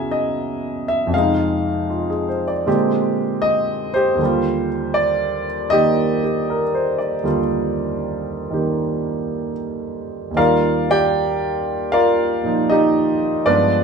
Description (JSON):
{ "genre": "solo jazz", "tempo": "78 BPM", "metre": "4/4", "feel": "swing 68% on 8ths, rubato", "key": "Eb major", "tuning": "A4 = 441 Hz", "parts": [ { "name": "warm concert grand piano", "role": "solo", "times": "0.0-13.8 s", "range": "Eb2 to Bb5", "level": "-17 LUFS", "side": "right 1 dB", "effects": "none" } ], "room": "wet studio reverb, RT60 0.7 s", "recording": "band playing live in one room", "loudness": "-17 LUFS", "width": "side -5 dB against mid", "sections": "0.0-10.4 A section; 10.4-13.8 B section", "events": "none", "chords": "0.0 E69; 1.1 Fm7; 2.7 Bb13; 4.2 Ebmaj9", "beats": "0.36 | 1.13 1.90 2.67 3.43 | 4.20 4.96 5.72 6.49 | 7.25 8.02 8.79 9.58 | 10.37 11.14 11.92 12.70 | 13.46" }